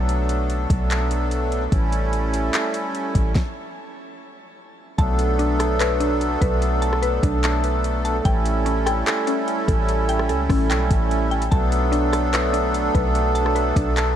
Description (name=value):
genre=hip hop, atmospheric cloud-rap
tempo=147 BPM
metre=4/4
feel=half-time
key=B minor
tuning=A4 = 440 Hz
part: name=accordion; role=sustained chords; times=0.0-14.2 s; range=F#3 to A4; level=-23 LUFS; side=right 1 dB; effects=light tremolo tuning, sidechain pumping
part: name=soft 808-style bass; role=bass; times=0.0-14.2 s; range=A1 to C#2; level=-22 LUFS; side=equal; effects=none
part: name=smooth R&B drum kit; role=drums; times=0.1-14.1 s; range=handclaps, hi-hat, kick drum, rim click, snare drum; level=-24 LUFS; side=equal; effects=vintage 12-bit sampler grit
part: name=mallet-like synth pluck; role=arpeggios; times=5.0-14.2 s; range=C#4 to A5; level=-26 LUFS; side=left 3 dB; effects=chorus, digital delay
room=light reverb, digital ambience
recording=none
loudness=-18 LUFS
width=side -10 dB against mid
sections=0.0-5.0 A section; 5.0-14.2 B section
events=stop 3.4-5.0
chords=0.0 Bm7; 1.7 A7; 5.0 Bm7; 8.3 A7; 11.5 Bm7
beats=| 0.09 0.50 0.91 1.31 | 1.72 2.13 2.54 2.95 | 3.35 3.76 4.17 4.58 | 4.99 5.39 5.80 6.21 | 6.62 7.03 7.43 7.84 | 8.25 8.66 9.07 9.48 | 9.88 10.29 10.70 11.11 | 11.52 11.93 12.33 12.74 | 13.15 13.56 13.97